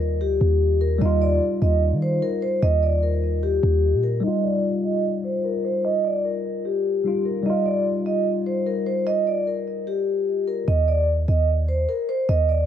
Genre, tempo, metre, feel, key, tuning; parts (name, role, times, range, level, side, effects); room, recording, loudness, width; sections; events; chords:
hip hop, trap; 149 BPM; 4/4; half-time; Eb major; A4 = 440 Hz
vibraphone with soft mallets; melody; 0.0-12.7 s; G4 to Eb5; -23 LUFS; equal; low-pass filter
tine electric piano; accompaniment; 0.0-10.7 s; G3 to F4; -26 LUFS; left 3 dB; lush chorus, low-pass filter
warm 808-style bass; bass; 0.0-4.2, 10.7-12.7 s; D2 to Eb3; -20 LUFS; equal
light reverb, studio ambience; -20 LUFS; side -9 dB against mid
0.0-4.2 A section; 4.2-10.7 B section; 10.7-12.7 C section
filter sweep 4.2-10.7
0.0 Ebadd9; 10.7 N.C.